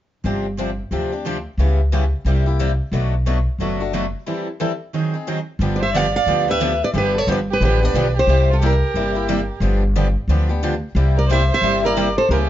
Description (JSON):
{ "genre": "acoustic string swing (jazz manouche)", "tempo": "179 BPM", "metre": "4/4", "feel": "swing 60% on 8ths", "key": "G mixolydian", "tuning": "A4 = 445 Hz", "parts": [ { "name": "picked steel-string acoustic guitar", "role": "accompaniment", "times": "0.2-12.5 s", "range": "B2 to B4", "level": "-26 LUFS", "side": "right 4 dB", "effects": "none" }, { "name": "upright bass", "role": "bass", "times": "0.2-12.5 s", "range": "F#1 to D2", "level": "-19 LUFS", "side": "equal", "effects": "none" }, { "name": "picked swing-style acoustic guitar", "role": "accompaniment", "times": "0.3-12.5 s", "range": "B2 to A4", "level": "-26 LUFS", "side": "left 6 dB", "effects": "none" }, { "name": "picked steel-string acoustic guitar", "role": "melody", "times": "5.8-12.4 s", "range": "A4 to F5", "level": "-20 LUFS", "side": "equal", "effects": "none" }, { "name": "warm violin", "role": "second line", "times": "5.8-12.5 s", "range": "F4 to D5", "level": "-24 LUFS", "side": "right 5 dB", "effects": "none" } ], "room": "light reverb", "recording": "dark, warm production, nothing above 7.5 kHz", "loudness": "-17 LUFS", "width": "side -12 dB against mid", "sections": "0.2-5.6 A section; 5.6-12.5 B section", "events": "break 4.3-5.6", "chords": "0.2 G7sus4; 1.6 C#m7b5; 2.3 C7; 2.9 Bm7; 4.3 Am7; 4.9 Ab7; 5.6 G7; 8.3 C7; 9.6 G7; 11.0 C7", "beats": "| 0.25 0.58 0.92 1.25 | 1.59 1.92 2.26 2.59 | 2.93 3.26 3.60 3.93 | 4.26 4.60 4.93 5.27 | 5.60 5.94 6.27 6.61 | 6.94 7.28 7.61 7.95 | 8.28 8.61 8.95 9.28 | 9.62 9.95 10.29 10.62 | 10.96 11.29 11.62 11.96 | 12.29" }